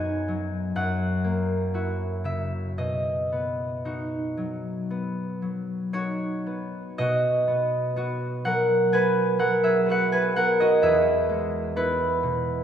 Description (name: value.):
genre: classical, solo harp piece.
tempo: 55-65 BPM.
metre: 4/4.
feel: rubato.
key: B major.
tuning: A4 = 440 Hz.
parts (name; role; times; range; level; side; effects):
concert harp; solo; 0.0-12.6 s; E2 to G#5; -23 LUFS; equal; none.
room: wet church reverb, RT60 2.7 s.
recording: recorded in a church or concert hall.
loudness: -22 LUFS.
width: side -8 dB against mid.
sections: 0.0-7.0 A section; 7.0-12.6 A section.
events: none.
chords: 0.0 B/F#; 0.8 F#7; 2.8 B; 10.8 E.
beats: 0.75 1.74 | 2.79 3.86 4.90 5.92 | 6.98 7.96 8.92 9.87 | 10.81 11.74.